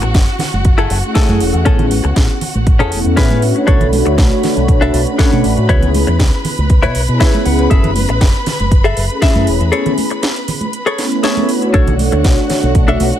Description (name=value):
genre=nu-disco, nu disco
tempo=119 BPM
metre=4/4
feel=straight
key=B dorian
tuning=A4 = 441 Hz
part: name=warm symphonic violin section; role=sustained chords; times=0.0-13.2 s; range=F#4 to B5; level=-24 LUFS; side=left 2 dB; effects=sidechain pumping
part: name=direct-recorded clean electric guitar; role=riff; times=0.0-13.1 s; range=C#4 to F#5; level=-19 LUFS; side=left 4 dB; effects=lush chorus, ping-pong delay
part: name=fingered electric bass with an envelope filter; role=bass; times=0.0-13.1 s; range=E1 to B2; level=-16 LUFS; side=equal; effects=none
part: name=house drum kit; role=drums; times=0.0-13.2 s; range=hi-hat, snare drum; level=-22 LUFS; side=right 1 dB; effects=none
part: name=electronic kick drum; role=drums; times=0.1-12.9 s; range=none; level=-12 LUFS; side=equal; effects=none
part: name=congas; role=percussion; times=0.4-13.1 s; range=none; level=-23 LUFS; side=right 4 dB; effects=none
part: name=warm analog pad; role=accompaniment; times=1.0-13.2 s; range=A3 to C#5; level=-17 LUFS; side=equal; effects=chorus, ping-pong delay
room=little or no reverb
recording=none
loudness=-11 LUFS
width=side -11 dB against mid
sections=0.0-13.2 A section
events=filter sweep on analog synth pad 0.0-13.2; clean electric guitar fill 7.0-7.7; break 9.7-11.7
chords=0.0 F#m9; 1.7 Amaj7; 3.7 Bm9; 5.7 C#m7; 7.7 F#m9; 9.7 Amaj7; 11.7 Bm9